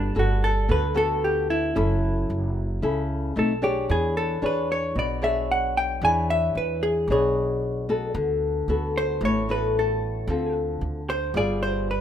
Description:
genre	bossa nova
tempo	112 BPM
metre	4/4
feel	straight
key	unclear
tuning	A4 = 440 Hz
part	vintage hollow-body jazz guitar	melody	0.0-12.0 s	D4 to G#5	-25 LUFS	equal	none
part	nylon-string guitar	accompaniment	0.0-12.0 s	A2 to C#5	-26 LUFS	left 2 dB	none
part	upright bass	bass	0.0-12.0 s	F#1 to E2	-28 LUFS	right 1 dB	none
room	light reverb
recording	minimal, uncompressed stereo recording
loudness	-22 LUFS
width	side -9 dB against mid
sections	0.0-12.0 A section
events	hollow-body jazz guitar solo 0.0-12.0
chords	0.0 Gmaj9; 1.8 F#m7; 3.4 B7b9; 3.9 E13; 8.2 D6; 10.3 Dm7; 11.4 G7b9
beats	0.16 0.69 1.23 | 1.76 2.29 2.83 3.36 | 3.90 4.43 4.96 5.50 | 6.03 6.56 7.09 7.63 | 8.16 8.69 9.23 9.76 | 10.29 10.82 11.36 11.89

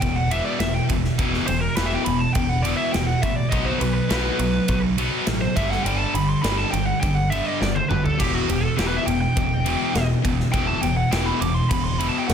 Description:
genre	heavy metal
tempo	103 BPM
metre	4/4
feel	straight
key	E minor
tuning	A4 = 440 Hz
part	high-gain lead guitar	melody	0.0-12.3 s	F#4 to D6	-26 LUFS	equal	distortion, ping-pong delay
part	distorted electric guitar	riff	0.0-12.3 s	E2 to B3	-26 LUFS	left 10 dB	distortion
part	scooped high-gain guitar	riff	0.0-12.3 s	E2 to B3	-26 LUFS	right 9 dB	distortion
part	growling picked electric bass	bass	0.0-12.3 s	E1 to B1	-27 LUFS	equal	overdrive
part	big rock drum kit	drums	0.0-12.3 s	crash cymbal, kick drum, ride cymbal, snare drum, toms	-26 LUFS	equal	none
room	little or no reverb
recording	dense, heavily limited modern master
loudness	-19 LUFS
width	side -8 dB against mid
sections	0.0-12.3 A section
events	lead electric guitar solo 0.0-12.3; drum fill 7.6-8.2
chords	0.0 E5; 3.5 B5; 5.6 G5; 8.2 Em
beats	0.02 0.60 | 1.18 1.77 2.35 2.94 | 3.52 4.10 4.69 5.27 | 5.86 6.44 7.02 7.61 | 8.19 8.78 9.36 9.95 | 10.53 11.12 11.70 12.29

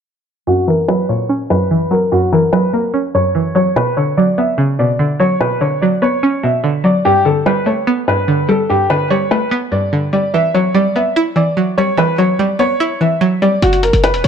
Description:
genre	hip hop, trap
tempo	146 BPM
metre	4/4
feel	half-time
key	unclear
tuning	A4 = 438 Hz
part	dark grand piano	melody	0.5-14.3 s	F#4 to E5	-15 LUFS	left 1 dB	low-pass filter
part	string-like resonator pluck	accompaniment	0.5-13.6 s	F#2 to E4	-15 LUFS	right 1 dB	chorus, low-pass filter
part	short 808-style bass	bass	13.6-14.3 s	E1 to C#2	-15 LUFS	equal	none
part	electronic hi-hat	drums	13.6-14.3 s	none	-22 LUFS	left 4 dB	none
room	light reverb, digital ambience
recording	none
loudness	-12 LUFS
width	side -7 dB against mid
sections	0.5-13.6 A section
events	filter sweep 0.5-13.6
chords	0.5 F#7; 3.8 Bmadd9; 7.0 Gadd9; 10.3 Emadd9; 13.6 F#5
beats	| 0.47 0.89 1.30 1.71 | 2.12 2.53 2.94 3.35 | 3.76 4.17 4.58 4.99 | 5.41 5.82 6.23 6.64 | 7.05 7.46 7.87 8.28 | 8.69 9.10 9.52 9.93 | 10.34 10.75 11.16 11.57 | 11.98 12.39 12.80 13.21 | 13.62 14.04

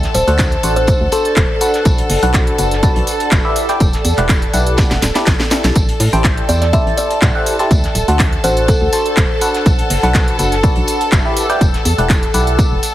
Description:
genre	piano house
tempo	123 BPM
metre	4/4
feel	swing 53% on 16ths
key	unclear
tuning	A4 = 440 Hz
part	clear studio violin section	sustained chords	0.0-12.9 s	A4 to A5	-25 LUFS	left 1 dB	sidechain pumping
part	organ-like FM bass	bass	0.0-12.8 s	D1 to A2	-17 LUFS	equal	sidechain pumping
part	cloth-damped thuddy drum kit	drums	0.0-12.9 s	hi-hat, snare drum, tambourine	-28 LUFS	equal	sidechain pumping on hats, high-pass filter on hats, small room ambience, high-pass filter on snare, sidechain pumping on perc, high-pass filter on perc, high-pass filter on room
part	house drum kit	drums	0.0-12.9 s	handclaps, hi-hat, snare drum	-20 LUFS	equal	small room ambience
part	warbly tape-like pad	texture	0.0-12.9 s	A4 to G5	-24 LUFS	right 1 dB	chorus, built-in reverb, sidechain pumping
part	kalimba	melody	0.1-1.5, 6.5-9.1 s	A4 to E5	-20 LUFS	equal	digital delay
part	barking FM electric piano	riff	0.3-12.8 s	D4 to A5	-20 LUFS	equal	phaser, sidechain pumping, digital delay
part	electronic kick drum	drums	0.4-12.7 s	none	-15 LUFS	equal	small room ambience
room	light reverb, studio reverb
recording	heavily compressed radio sound, multiband compression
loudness	-11 LUFS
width	side -14 dB against mid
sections	0.0-12.9 A section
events	drum fill 4.8-5.8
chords	0.0 D7; 1.9 Bm7; 3.6 Em9; 5.8 Am7; 7.7 D7; 9.7 Bm7; 11.4 Em9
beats	0.39 0.88 1.37 | 1.85 2.34 2.83 3.32 | 3.81 4.29 4.78 5.27 | 5.76 6.24 6.73 7.22 | 7.71 8.20 8.68 9.17 | 9.66 10.15 10.63 11.12 | 11.61 12.10 12.59

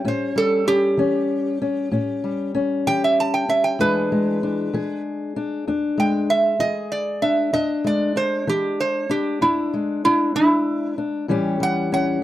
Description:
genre	acoustic country blues, solo or duo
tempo	64 BPM (dotted quarters)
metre	12/8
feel	straight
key	unclear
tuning	A4 = 444 Hz
part	metal-body resonator slide guitar	melody	0.0-12.2 s	E4 to A5	-20 LUFS	right 2 dB	none
part	fingerpicked old ladder-braced acoustic guitar	accompaniment	0.0-12.2 s	E2 to G#4	-22 LUFS	left 3 dB	none
room	little or no reverb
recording	dry, close 1970s-style studio recording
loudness	-19 LUFS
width	side -14 dB against mid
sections	0.0-12.2 A section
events	resonator guitar played with a steel bar solo 0.0-12.2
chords	0.0 A7; 3.8 E7; 11.3 A7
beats	| 0.05 0.98 1.92 2.86 | 3.79 4.73 5.67 6.60 | 7.54 8.47 9.41 10.35 | 11.29 12.22

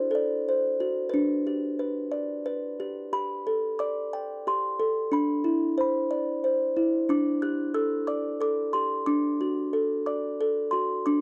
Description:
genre	children's music, lullaby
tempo	60 BPM (dotted quarters)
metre	6/8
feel	straight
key	G major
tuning	A4 = 440 Hz
part	music box	solo	0.0-11.2 s	D4 to F#6	-27 LUFS	equal	none
room	light reverb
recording	dark, warm production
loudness	-27 LUFS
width	mono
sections	0.0-3.1 A section; 3.1-11.2 A section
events	none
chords	0.0 D7; 1.1 G; 3.1 Gadd9; 5.1 Cadd9; 7.1 Gsus2; 9.1 D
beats	0.14 | 1.13 2.12 | 3.13 4.13 | 5.12 6.11 | 7.09 8.07 | 9.07 10.07 | 11.07

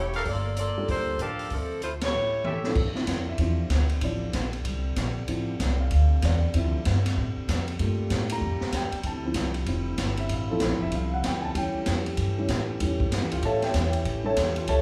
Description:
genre	jazz, big band swing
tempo	191 BPM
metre	4/4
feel	swing 63% on 8ths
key	D minor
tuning	A4 = 440 Hz
part	warm saxophone section	melody	0.0-2.6 s	F3 to D5	-32 LUFS	equal	none
part	upright bass	bass	0.0-14.8 s	E1 to A2	-30 LUFS	equal	none
part	warm trumpet section	stabs	0.1-2.8 s	G4 to A5	-37 LUFS	equal	none
part	swinging big-band drum kit	drums	0.1-14.8 s	crash cymbal, hi-hat, kick drum, ride cymbal, snare drum, toms	-34 LUFS	equal	none
part	warm grand piano	accompaniment	0.8-14.8 s	F3 to Bb5	-33 LUFS	equal	none
part	clear trombone section	sustained chords	2.8-14.8 s	C3 to G4	-38 LUFS	equal	none
room	wet recital hall reverb, RT60 1.8 s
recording	recorded in a church or concert hall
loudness	-27 LUFS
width	mono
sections	0.0-2.8 A section; 2.8-14.8 B section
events	band accent 2.0; drum fill 2.1-2.8; grand piano solo 2.8-14.8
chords	0.3 Gm9; 1.5 Dm9; 2.1 A7; 2.8 Dm9; 7.8 Gm9; 9.0 Dm9; 11.6 A7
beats	| 0.25 0.57 0.88 1.20 | 1.51 1.82 2.14 2.45 | 2.76 3.08 3.39 3.71 | 4.02 4.33 4.65 4.96 | 5.28 5.59 5.90 6.22 | 6.53 6.84 7.16 7.47 | 7.79 8.10 8.41 8.73 | 9.04 9.36 9.67 9.98 | 10.30 10.61 10.92 11.24 | 11.55 11.87 12.18 12.49 | 12.80 13.12 13.43 13.74 | 14.06 14.37 14.69

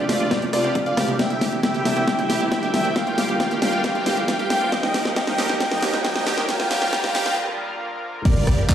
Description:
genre	uplifting trance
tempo	136 BPM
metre	4/4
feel	straight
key	unclear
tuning	A4 = 439 Hz
part	supersaw chords	melody	0.0-8.7 s	F4 to G5	-25 LUFS	equal	sidechain pumping, low-pass filter, dub echo
part	dark grand piano	second line	0.0-8.7 s	D5 to G5	-29 LUFS	equal	sidechain pumping, low-pass filter, dub echo
part	lush unison pad	sustained chords	0.0-8.7 s	C3 to Bb4	-28 LUFS	equal	chorus, sidechain pumping
part	wide unison pluck	arpeggios	0.0-8.7 s	Eb4 to G4	-30 LUFS	right 4 dB	phaser, sidechain pumping, dub echo
part	plucky analog bass	bass	0.0-8.7 s	D1 to G2	-30 LUFS	equal	none
part	riser and impact	sound effects	0.0-8.7 s	none	-31 LUFS	equal	none
part	house drum kit	drums	0.1-8.7 s	crash cymbal, handclaps, hi-hat, rim click, snare drum	-24 LUFS	equal	none
part	electronic kick drum	drums	0.3-8.7 s	none	-24 LUFS	equal	high-pass filter on kick, high-pass filter on room
room	wet digital room reverb, RT60 1.0 s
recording	played on a big sound system in a bare room, large studio reverb, high-pass filter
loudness	-19 LUFS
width	side -10 dB against mid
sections	0.0-8.3 A section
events	build-up 0.0-8.3; drum fill 0.0-7.4; riser 0.0-7.4; filter sweep on grand piano 0.0-8.3; filter sweep 0.0-8.3; break 7.4-8.3; impact 8.3-8.7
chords	0.0 Dm7; 1.2 C; 3.0 Gm7; 4.7 Eb; 6.5 Bb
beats	0.31 0.75 | 1.19 1.64 2.08 2.52 | 2.96 3.40 3.84 4.28 | 4.72 5.16 5.61 6.05 | 6.49 6.93 7.37 7.81 | 8.25 8.69

